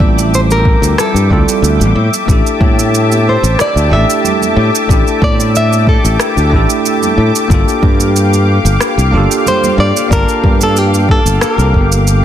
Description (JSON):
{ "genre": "sunset chillout", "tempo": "92 BPM", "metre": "4/4", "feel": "straight", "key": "unclear", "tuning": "A4 = 439 Hz", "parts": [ { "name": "flamenco guitar", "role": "melody", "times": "0.0-12.2 s", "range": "G4 to E5", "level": "-16 LUFS", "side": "right 1 dB", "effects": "tape echo" }, { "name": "bell-like tine electric piano", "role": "accompaniment", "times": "0.0-12.2 s", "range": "G3 to A5", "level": "-17 LUFS", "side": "moving between left 6 dB and right 7 dB", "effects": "auto-pan, tape echo" }, { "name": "lush unison pad", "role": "sustained chords", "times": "0.0-12.2 s", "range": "F3 to D6", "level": "-18 LUFS", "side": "left 2 dB", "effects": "chorus" }, { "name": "modern bright fingered electric bass", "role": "bass", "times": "0.0-12.2 s", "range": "G1 to A2", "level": "-12 LUFS", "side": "equal", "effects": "none" }, { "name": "electronic kick drum", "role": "drums", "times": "0.0-11.9 s", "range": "none", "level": "-12 LUFS", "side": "equal", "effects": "overdrive" }, { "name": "congas", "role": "percussion", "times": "0.0-11.9 s", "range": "none", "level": "-24 LUFS", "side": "right 1 dB", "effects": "none" }, { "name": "electronic shaker and rim click", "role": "drums", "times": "0.2-12.2 s", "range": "none", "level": "-18 LUFS", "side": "right 2 dB", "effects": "overdrive" } ], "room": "moderate recital hall reverb, RT60 1.4 s", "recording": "dense, heavily limited modern master", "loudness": "-9 LUFS", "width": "side -10 dB against mid", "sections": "0.0-12.2 A section", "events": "none", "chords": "0.0 Dm11; 2.0 A7sus4; 7.5 Gm7" }